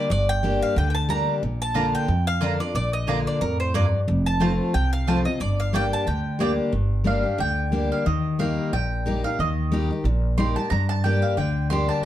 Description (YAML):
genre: bluegrass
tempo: 181 BPM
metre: 4/4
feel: swing 55% on 8ths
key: G minor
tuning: A4 = 439 Hz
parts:
  - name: mandolin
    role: melody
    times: 0.0-6.6 s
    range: Bb4 to Bb5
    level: -27 LUFS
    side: right 1 dB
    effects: none
  - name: picked steel-string acoustic guitar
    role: accompaniment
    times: 0.0-12.0 s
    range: F2 to G4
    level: -24 LUFS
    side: left 2 dB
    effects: none
  - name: upright bass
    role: bass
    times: 0.1-11.9 s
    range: F1 to G2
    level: -25 LUFS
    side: right 1 dB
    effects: none
  - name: mandolin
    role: stabs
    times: 1.7-12.0 s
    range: Bb3 to C6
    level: -28 LUFS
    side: right 3 dB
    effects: none
room: moderate studio reverb, RT60 0.7 s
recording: dark, warm production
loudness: -21 LUFS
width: side -12 dB against mid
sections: 0.0-6.7 A section; 6.7-12.1 B section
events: mandolin solo 6.7-12.1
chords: 0.0 Gm; 1.4 Bb; 4.1 F; 5.4 Gm; 8.1 Eb; 10.7 Gm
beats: | 0.10 0.43 0.77 1.10 | 1.43 1.76 2.09 2.42 | 2.76 3.09 3.42 3.75 | 4.08 4.42 4.75 5.08 | 5.41 5.74 6.07 6.41 | 6.74 7.07 7.40 7.73 | 8.07 8.40 8.73 9.06 | 9.39 9.73 10.06 10.39 | 10.72 11.05 11.38 11.72